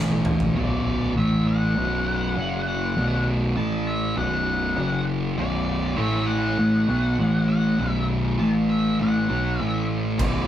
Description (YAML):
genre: stoner and doom metal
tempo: 100 BPM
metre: 4/4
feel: straight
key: B minor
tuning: A4 = 436 Hz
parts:
  - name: thick fuzz guitar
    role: riff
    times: 0.0-10.5 s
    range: B1 to B3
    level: -22 LUFS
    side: equal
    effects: distortion
  - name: growling picked electric bass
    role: bass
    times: 0.0-10.5 s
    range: B0 to B1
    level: -29 LUFS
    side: equal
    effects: overdrive
  - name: oversized low-tuned drum kit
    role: drums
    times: 0.1-0.5, 10.2-10.3 s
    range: crash cymbal, kick drum, toms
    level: -27 LUFS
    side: equal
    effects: none
  - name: octave-fuzz lead guitar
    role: melody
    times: 0.6-10.5 s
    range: D5 to A5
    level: -29 LUFS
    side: left 2 dB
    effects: distortion
room: moderate stone room reverb, RT60 0.9 s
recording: rough rehearsal-room recording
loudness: -20 LUFS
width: side -11 dB against mid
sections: 0.6-10.5 A section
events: drum fill 0.0-0.6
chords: 0.0 A5; 0.6 Bm; 1.2 A5; 1.8 B5; 2.4 F#5; 3.0 B5; 3.6 A5; 4.2 B5; 4.8 F#5; 5.4 Bm; 6.0 A5; 6.6 B5; 7.2 A5; 7.8 B5; 8.4 A5; 9.0 B5; 9.6 A5